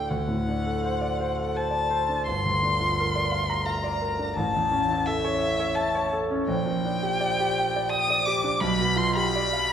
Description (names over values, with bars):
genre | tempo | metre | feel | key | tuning
classical, romantic duo for violin and grand piano | 85 BPM | 3/4 | rubato | unclear | A4 = 439 Hz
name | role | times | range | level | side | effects
rich violin | melody | 0.0-9.7 s | E5 to Eb6 | -26 LUFS | left 2 dB | none
clear concert grand piano | accompaniment | 0.0-9.7 s | G1 to Bb5 | -26 LUFS | right 1 dB | none
room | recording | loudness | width
wet recital hall reverb, RT60 1.4 s | heard from further back in the room | -23 LUFS | side -8 dB against mid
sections
0.0-9.7 A section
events
none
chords
0.1 D7; 2.3 Gm7; 4.4 A; 6.5 Gm/Bb; 8.6 G7/B